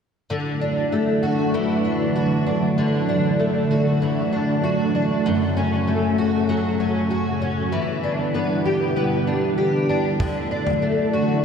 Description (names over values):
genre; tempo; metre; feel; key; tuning
dream pop; 97 BPM; 4/4; straight; D major; A4 = 438 Hz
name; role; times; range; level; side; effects
string machine, cellos; sustained chords; 0.3-11.4 s; C#3 to B4; -22 LUFS; right 2 dB; phaser, ensemble chorus
fingerpicked twelve-string acoustic guitar; arpeggios; 0.3-11.4 s; F#2 to G4; -21 LUFS; left 1 dB; ensemble chorus, diffuse ambient delay
loose indie drum kit; drums; 10.2-10.8 s; kick drum, toms; -27 LUFS; right 1 dB; none
room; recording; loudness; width
wet lush hall reverb, RT60 2.8 s; dreamy mix soaked in reverb; -19 LUFS; side -6 dB against mid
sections
0.3-11.4 A section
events
none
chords
0.3 Dadd9; 5.3 F#m; 7.7 Em7; 10.2 Dadd9